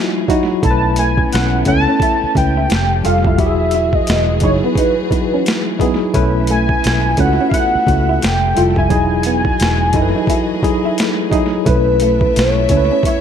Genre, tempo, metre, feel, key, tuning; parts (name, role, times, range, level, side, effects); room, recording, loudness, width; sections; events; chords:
R&B, neo-soul; 87 BPM; 4/4; swing 60% on 16ths; E major; A4 = 440 Hz
tine electric piano; accompaniment; 0.0-13.2 s; F#3 to B4; -18 LUFS; left 1 dB; overdrive, fast stereo tremolo
clear studio string section; sustained chords; 0.0-13.2 s; E3 to E5; -27 LUFS; left 3 dB
electric guitar through a small old amp; second line; 0.3-13.2 s; A3 to F4; -23 LUFS; right 5 dB; analog delay
boom bap sampler-style drum kit; drums; 0.3-13.2 s; hi-hat, kick drum, snare drum; -19 LUFS; equal; overdrive, analog delay
warm velvety synth lead; melody; 0.6-13.2 s; B4 to A5; -18 LUFS; equal; chorus
vintage muted fingered electric bass; bass; 0.6-12.9 s; E1 to C#2; -17 LUFS; equal
light reverb, digital ambience; echo-heavy mix; -12 LUFS; side -8 dB against mid
0.0-13.2 A section
0.0 Emaj9; 0.6 B9sus4; 2.7 Fadd9; 3.4 Emaj9; 6.1 B9sus4; 8.2 Fmaj9; 8.9 Emaj9; 11.7 B9sus4